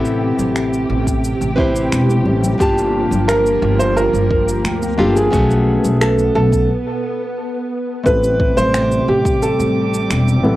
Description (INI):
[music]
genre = sunset chillout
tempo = 88 BPM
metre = 4/4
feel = straight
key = unclear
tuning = A4 = 440 Hz
[part]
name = nylon-string guitar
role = accompaniment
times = 0.0-10.6 s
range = A3 to A5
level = -20 LUFS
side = equal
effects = auto-pan, low-pass filter, tape echo
[part]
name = soft string machine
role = sustained chords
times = 0.0-10.6 s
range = C3 to G4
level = -22 LUFS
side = equal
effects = ensemble chorus
[part]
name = upright bass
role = bass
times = 0.0-10.6 s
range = E1 to D2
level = -19 LUFS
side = equal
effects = none
[part]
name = electronic shaker and finger snaps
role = drums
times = 0.1-10.4 s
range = none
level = -26 LUFS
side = equal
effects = cassette tape
[part]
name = congas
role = percussion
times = 0.4-10.6 s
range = none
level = -27 LUFS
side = left 2 dB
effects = none
[part]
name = electronic kick drum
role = drums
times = 1.1-9.4 s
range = none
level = -20 LUFS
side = equal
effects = cassette tape
[part]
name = warm grand piano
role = melody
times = 2.6-10.4 s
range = G4 to C5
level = -18 LUFS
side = right 1 dB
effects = cassette tape, tape echo
[part]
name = drifting glass-harmonics texture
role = texture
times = 8.6-10.6 s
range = D6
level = -29 LUFS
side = right 7 dB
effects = chorus, built-in reverb
[sound]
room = light reverb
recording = home recording on cassette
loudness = -14 LUFS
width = side -16 dB against mid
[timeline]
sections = 0.0-8.1 A section; 8.1-10.6 A section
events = break 6.7-8.1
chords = 0.0 Am9; 2.6 Gm9; 5.3 B7sus2; 8.1 Am9